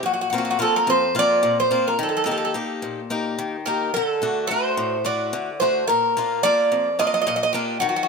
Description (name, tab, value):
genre	greek folk, Greek bouzouki band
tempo	216 BPM (eighths)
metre	7/8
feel	straight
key	unclear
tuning	A4 = 439 Hz
part	Greek bouzouki	melody	0.0-8.1 s	F#4 to Eb5	-20 LUFS	right 1 dB	none
part	picked swing-style acoustic guitar	accompaniment	0.0-8.1 s	F2 to G4	-26 LUFS	left 4 dB	none
room	moderate plate reverb, RT60 2.4 s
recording	minimal, uncompressed stereo recording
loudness	-19 LUFS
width	side -4 dB against mid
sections	0.0-8.1 A section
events	none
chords	0.1 Bbsus2; 2.0 Eb; 3.9 D; 5.9 Bb